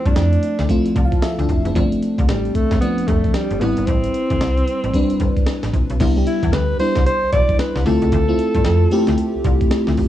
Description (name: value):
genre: R&B, new jack swing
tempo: 113 BPM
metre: 4/4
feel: swing 62% on 16ths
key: D dorian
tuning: A4 = 439 Hz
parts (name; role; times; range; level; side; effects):
- mellow alto saxophone; melody; 0.0-9.4 s; G3 to D5; -22 LUFS; right 1 dB; cassette tape, analog delay
- FM electric piano with soft pad layer; accompaniment; 0.0-10.1 s; F3 to A5; -20 LUFS; left 1 dB; chorus, cassette tape
- slap-like FM bass; bass; 0.1-10.1 s; F1 to G2; -20 LUFS; equal; none
- breakbeat sampler-style drum kit; drums; 0.1-10.1 s; crash cymbal, hi-hat, kick drum, snare drum; -20 LUFS; equal; vintage 12-bit sampler grit, cassette tape
room: little or no reverb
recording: home recording on cassette, small room ambience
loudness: -15 LUFS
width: side -12 dB against mid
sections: 0.0-6.0 A section; 6.0-10.1 B section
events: FM electric piano fill 0.7-1.8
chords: 0.0 Dm9; 1.8 G9sus4; 3.6 Am9; 6.0 Cmaj9; 7.9 Dm9